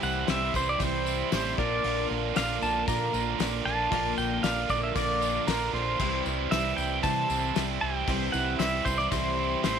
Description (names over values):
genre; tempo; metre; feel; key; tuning
folk rock and heartland rock; 115 BPM; 4/4; straight; unclear; A4 = 440 Hz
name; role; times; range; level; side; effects
pedal steel guitar; melody; 0.0-9.8 s; Bb4 to Bb5; -30 LUFS; right 1 dB; none
barky reed electric piano; accompaniment; 0.0-9.8 s; E4 to D5; -39 LUFS; right 12 dB; overdrive, fast tremolo
picked twelve-string acoustic guitar; accompaniment; 0.0-9.8 s; Bb2 to C5; -34 LUFS; left 14 dB; none
crunchy overdriven guitar; riff; 0.0-9.8 s; Bb2 to F4; -31 LUFS; right 12 dB; none
fingered electric bass; bass; 0.0-9.8 s; A1 to C3; -34 LUFS; equal; none
tambourine; percussion; 0.0-9.8 s; none; -43 LUFS; left 18 dB; none
cloth-damped thuddy drum kit; drums; 0.3-9.8 s; crash cymbal, hi-hat, kick drum, snare drum; -34 LUFS; left 5 dB; none
room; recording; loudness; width
light reverb; 1960s-style stereo with parts hard left and right; -25 LUFS; side -7 dB against mid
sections
0.0-9.8 A section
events
none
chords
0.0 C; 1.6 Bb; 6.0 C